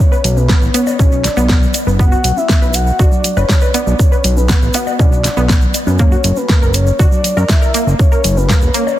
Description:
progressive house; 120 BPM; 4/4; straight; B minor; A4 = 440 Hz
soft octave-layered synth lead; melody; 0.0-9.0 s; B4 to F#5; -20 LUFS; left 2 dB; chorus, tremolo, sidechain pumping, ping-pong delay
wide unison pluck; arpeggios; 0.1-8.8 s; A#3 to B4; -20 LUFS; equal; sidechain pumping, tape echo
egg shaker; percussion; 0.1-9.0 s; -28 LUFS; right 4 dB
fat analog bass; bass; 0.2-8.7 s; E1 to F#2; -15 LUFS; equal; sidechain pumping
pop drum kit; drums; 0.2-8.8 s; hi-hat, snare drum; -19 LUFS; equal; sidechain pumping on hats, sidechain pumping on cymbals
congas and bongos; percussion; 0.2-9.0 s; -24 LUFS; left 3 dB; sidechain pumping on perc
electronic kick drum; drums; 0.5-8.6 s; -12 LUFS; equal
light reverb, digital ambience; dense, heavily limited modern master; -10 LUFS; side -13 dB against mid
0.0-9.0 A section
0.0 Bm; 6.0 F#7
0.49 0.99 1.49 | 1.99 2.49 2.99 3.49 | 3.99 4.49 4.99 5.49 | 5.99 6.49 6.99 7.49 | 7.99 8.49 8.99

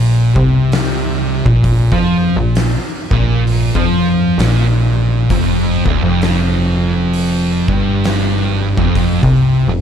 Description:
stoner and doom metal; 66 BPM; 4/4; swing 61% on 8ths; A4 = 440 Hz
thick fuzz guitar; riff; 0.0-9.8 s; D2 to F3; -17 LUFS; left 7 dB; distortion
thick fuzz guitar; riff; 0.0-9.8 s; D2 to F3; -16 LUFS; right 7 dB; distortion
plucky analog bass; bass; 0.0-9.8 s; D1 to F2; -18 LUFS; left 1 dB; tube saturation
oversized low-tuned drum kit; drums; 0.4-9.5 s; hi-hat, kick drum, snare drum; -20 LUFS; equal
little or no reverb; dark, warm production; -12 LUFS; side -8 dB against mid
0.0-9.8 A section
0.0 Bb5; 5.3 F5
0.72 | 1.64 2.56 3.48 4.39 | 5.31 6.22 7.13 8.04 | 8.96

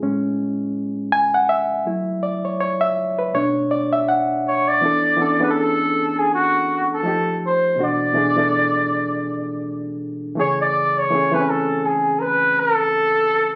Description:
R&B; 81 BPM; 4/4; swing 58% on 16ths; B dorian; A4 = 440 Hz
barky reed electric piano; accompaniment; 0.0-13.6 s; A2 to G#5; -23 LUFS; equal
breathy flugelhorn; melody; 4.5-13.6 s; F#4 to D5; -20 LUFS; equal; slapback echo
light reverb, small room ambience; recorded on a phone in the room, studio ambience, compression; -20 LUFS; mono
0.0-4.8 A section; 4.8-13.6 B section
reed electric piano solo 0.0-4.8
0.0 Amaj7; 1.9 F#m7; 3.3 Bm7; 4.8 Bm11; 7.0 F9; 7.8 E9sus4/B; 10.4 Amaj7
0.37 1.11 | 1.85 2.60 3.34 4.08 | 4.82 5.56 6.30 7.04 | 7.78 8.52 9.26 10.00 | 10.74 11.48 12.22 12.97

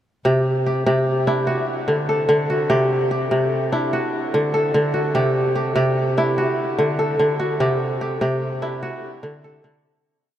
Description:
west african traditional, West African string and xylophone music; 98 BPM (dotted quarters); 12/8; straight; C lydian; A4 = 440 Hz
kora; solo; 0.2-10.4 s; C3 to A4; -18 LUFS; equal
wet huge ambient reverb, RT60 7.7 s; in a vast, echoing space; -18 LUFS; side -11 dB against mid
0.3-10.1 A section
fade-out 7.6-10.1
0.3 C; 1.5 D; 2.7 C; 3.9 D; 5.2 C; 6.4 D; 7.6 C; 8.8 D
| 0.25 0.87 1.48 2.09 | 2.70 3.32 3.93 4.54 | 5.15 5.76 6.37 6.98 | 7.60 8.21 8.82 9.44

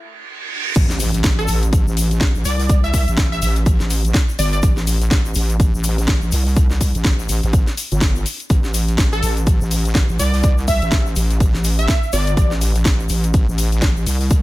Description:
bass house; 124 BPM; 4/4; swing 59% on 16ths; A minor; A4 = 445 Hz
reverse cymbal and impact; sound effects; 0.0-2.7 s; -27 LUFS; right 2 dB
wobble bass; bass; 0.8-14.4 s; G1 to C2; -18 LUFS; equal; chorus, sidechain pumping
breakbeat sampler-style drum kit; drums; 0.8-14.4 s; hi-hat, snare drum; -36 LUFS; equal
electronic kick drum; drums; 0.8-14.4 s; -16 LUFS; equal; overdrive, small room reverb
house drum kit; drums; 0.8-14.4 s; crash cymbal, hi-hat, snare drum; -24 LUFS; left 1 dB; overdrive, small room reverb
egg shaker; percussion; 0.8-14.4 s; -30 LUFS; left 5 dB
plucky unison lead; melody; 1.4-4.6, 9.1-12.5 s; A4 to E5; -24 LUFS; equal; lush chorus, ping-pong delay
little or no reverb; -15 LUFS; side -18 dB against mid
0.8-14.4 A section
break 0.0-0.8; reverse cymbal 0.0-0.8; drop 0.8-14.4; impact 0.8-2.7
0.0 N.C.; 0.8 A5
0.28 | 0.76 1.24 1.73 2.21 | 2.69 3.18 3.66 4.15 | 4.63 5.11 5.60 6.08 | 6.57 7.05 7.53 8.02 | 8.50 8.98 9.47 9.95 | 10.44 10.92 11.40 11.89 | 12.37 12.86 13.34 13.82 | 14.31

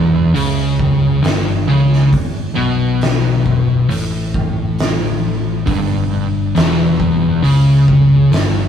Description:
stoner and doom metal; 68 BPM; 4/4; straight; A4 = 440 Hz
fuzz guitar; riff; 0.0-8.7 s; E2 to C#3; -13 LUFS; left 1 dB; distortion
sustaining fretless electric bass; bass; 0.0-8.7 s; E1 to C#2; -22 LUFS; equal; overdrive
oversized low-tuned drum kit; drums; 0.4-8.5 s; hi-hat, kick drum, snare drum; -20 LUFS; right 1 dB
light reverb; rough rehearsal-room recording; -12 LUFS; side -8 dB against mid
0.0-8.7 A section
0.0 Emadd11
0.35 1.24 | 2.12 3.01 3.90 4.78 | 5.67 6.55 7.44 8.32

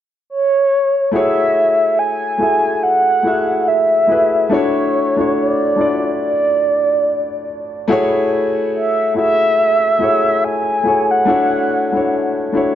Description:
R&B; 71 BPM; 4/4; swing 58% on 16ths; F# minor; A4 = 439 Hz
mellow horn-like synth lead; melody; 0.3-12.4 s; C#5 to G#5; -15 LUFS; right 1 dB; chorus, ping-pong delay
warm concert grand piano; accompaniment; 1.1-12.8 s; A3 to E5; -17 LUFS; left 2 dB
light reverb, small room ambience; nothing above 7.8 kHz; -13 LUFS; side -10 dB against mid
0.0-1.1 A section; 1.1-12.8 B section
0.0 N.C.; 1.1 F#m7; 4.5 Dmaj7; 7.9 F#m7; 11.3 Dmaj7
0.29 | 1.13 1.98 2.82 3.67 | 4.51 5.36 6.20 7.05 | 7.89 8.74 9.58 10.43 | 11.27 12.12

